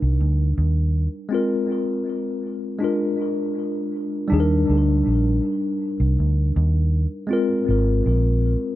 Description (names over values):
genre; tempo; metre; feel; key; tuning
lovers rock reggae; 80 BPM; 4/4; straight; Eb major; A4 = 440 Hz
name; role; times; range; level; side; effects
mellow tine electric piano; accompaniment; 0.0-8.8 s; G3 to Bb4; -22 LUFS; left 1 dB; medium stereo tremolo, tape echo
vintage muted fingered electric bass; bass; 0.0-8.5 s; Ab1 to Eb2; -18 LUFS; equal; none
room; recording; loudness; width
light reverb, digital ambience; none; -19 LUFS; side -14 dB against mid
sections
0.0-4.3 A section; 4.3-8.8 B section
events
break 1.3-4.3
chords
0.0 Ebmaj7; 1.3 Ab69; 2.8 Bb7; 4.3 Ebmaj7; 7.3 Ab69